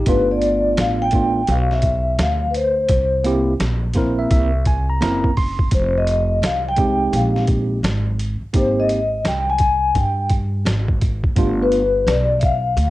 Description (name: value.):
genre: hip hop, jazz-hop.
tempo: 85 BPM.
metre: 4/4.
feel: swing 64% on 16ths.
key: unclear.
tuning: A4 = 443 Hz.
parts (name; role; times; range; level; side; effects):
tine electric piano; accompaniment; 0.0-11.8 s; Ab3 to C6; -21 LUFS; right 2 dB; medium stereo tremolo, cassette tape, plate reverb.
upright bass; bass; 0.0-12.9 s; F1 to G2; -21 LUFS; equal; none.
vibraphone with soft mallets; melody; 0.1-12.9 s; G4 to Ab5; -19 LUFS; left 2 dB; plate reverb.
boom bap sampler-style drum kit; drums; 0.1-12.9 s; hi-hat, kick drum, snare drum; -21 LUFS; equal; cassette tape.
room: light reverb.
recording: home recording on cassette.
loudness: -16 LUFS.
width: side -17 dB against mid.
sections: 0.0-12.9 A section.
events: tine electric piano fill 3.6-5.7.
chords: 0.1 G7; 2.9 C7; 5.7 Fm9; 8.5 Abmaj7; 11.4 G7.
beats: | 0.07 0.78 1.48 2.19 | 2.89 3.60 4.30 5.01 | 5.72 6.42 7.13 7.83 | 8.54 9.25 9.95 10.66 | 11.36 12.07 12.78.